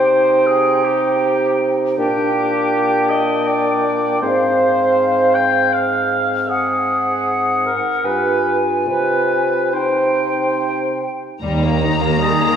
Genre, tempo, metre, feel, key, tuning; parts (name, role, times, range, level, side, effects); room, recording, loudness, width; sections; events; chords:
classical, slow romantic movement for symphony orchestra; 70-82 BPM; 3/4; rubato; C minor; A4 = 440 Hz
bright clarinet; second line; 0.0-11.1 s; C4 to F4; -25 LUFS; equal
mellow cor anglais; second line; 0.0-12.6 s; G4 to G5; -18 LUFS; equal
small flute group; second line; 0.0-11.1 s; F5 to Ab5; -22 LUFS; right 1 dB
warm bassoon; accompaniment; 0.0-11.1 s; G2 to C3; -20 LUFS; right 1 dB
rich studio violin section; melody; 11.4-12.6 s; Bb5; -22 LUFS; left 5 dB
rich studio violin section; second line; 11.4-12.6 s; G3 to Eb4; -21 LUFS; left 5 dB
dark studio viola section; accompaniment; 11.4-12.6 s; Eb3; -21 LUFS; right 4 dB
rich studio double bass section; bass; 11.4-12.1 s; Eb2; -22 LUFS; right 3 dB
warm studio cello section; bass; 11.4-12.1 s; Eb2; -21 LUFS; right 1 dB
wet scoring stage reverb, RT60 2.0 s; heard from further back in the room; -14 LUFS; side -8 dB against mid
0.0-11.4 A section; 11.4-12.6 B section
0.0 Cm; 2.0 Gm/Bb; 4.2 Fm/Ab; 8.1 G7b9; 8.9 Cm; 11.4 Eb